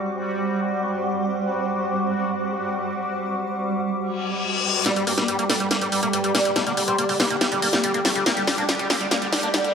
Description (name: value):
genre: psychedelic trance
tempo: 141 BPM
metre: 4/4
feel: straight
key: G harmonic minor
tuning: A4 = 440 Hz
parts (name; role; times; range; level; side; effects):
- bubbling stepped-filter texture; sustained chords; 0.0-9.7 s; G3 to G4; -27 LUFS; left 1 dB; chorus, built-in reverb
- granular cloud pad; texture; 0.0-9.7 s; G3 to D6; -27 LUFS; right 2 dB; built-in reverb
- reverse cymbal and riser; sound effects; 4.2-9.7 s; none; -29 LUFS; left 6 dB; none
- oud; melody; 4.9-9.7 s; G2 to D4; -27 LUFS; right 1 dB; phaser, dub echo
- screaming distorted acid line; riff; 4.9-9.7 s; G3 to Bb3; -26 LUFS; moving between left 5 dB and right 3 dB; distortion, chorus, auto-pan, dub echo
- techno drum kit; drums; 4.9-9.7 s; hi-hat, snare drum; -23 LUFS; equal; none
room: wet digital room reverb, RT60 1.1 s, digital ambience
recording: high-pass filter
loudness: -20 LUFS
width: side -6 dB against mid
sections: 0.0-4.9 A section; 4.9-9.7 B section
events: reverse cymbal 4.2-4.9; build-up 4.9-9.7; drum fill 4.9-9.7; filter sweep on acid bass 4.9-9.7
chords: 0.0 G5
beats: 0.18 0.60 1.03 | 1.45 1.88 2.30 2.73 | 3.15 3.58 4.01 4.43 | 4.86 5.28 5.71 6.13 | 6.56 6.99 7.41 7.84 | 8.26 8.69 9.11 9.54